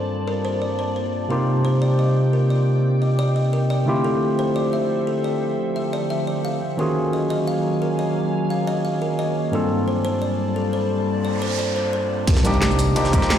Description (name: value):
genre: liquid drum and bass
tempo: 175 BPM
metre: 4/4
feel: swing 53% on 16ths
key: C dorian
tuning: A4 = 442 Hz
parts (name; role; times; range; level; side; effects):
- barky tine electric piano; accompaniment; 0.0-13.4 s; G2 to A5; -21 LUFS; equal; dub echo
- glassy FM pad; sustained chords; 0.0-13.4 s; D3 to D6; -26 LUFS; equal; ensemble chorus, built-in reverb
- buzzing kalimba; arpeggios; 0.3-13.4 s; A4 to F5; -27 LUFS; left 2 dB; low-pass filter, tape echo
- noise sweep and impact; sound effects; 11.2-13.4 s; none; -27 LUFS; right 1 dB; none
- dark detuned saw bass; bass; 12.3-13.2 s; C2; -21 LUFS; equal; none
- electronic kick drum; drums; 12.3-13.2 s; none; -18 LUFS; equal; none
- garage drum kit; drums; 12.3-13.4 s; crash cymbal, hi-hat, rim click, shaker, snare drum; -25 LUFS; right 1 dB; none
- jungle sampler-style drum kit; drums; 12.3-13.4 s; hi-hat, ride cymbal, snare drum; -28 LUFS; right 1 dB; high-pass filter on cymbals, high-pass filter on snare, high-pass filter on hats, high-pass filter on room
room: light reverb, digital ambience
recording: played on a big sound system in a bare room, large studio reverb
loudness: -19 LUFS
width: side -9 dB against mid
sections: 0.0-12.3 A section; 12.3-13.4 B section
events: noise sweep 11.2-12.3; drop 12.3-13.4; impact 12.3-13.4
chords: 0.0 Gm11; 1.3 Cm11; 3.9 Dm11; 6.8 Ebm11; 9.5 Gm11; 12.3 Cm11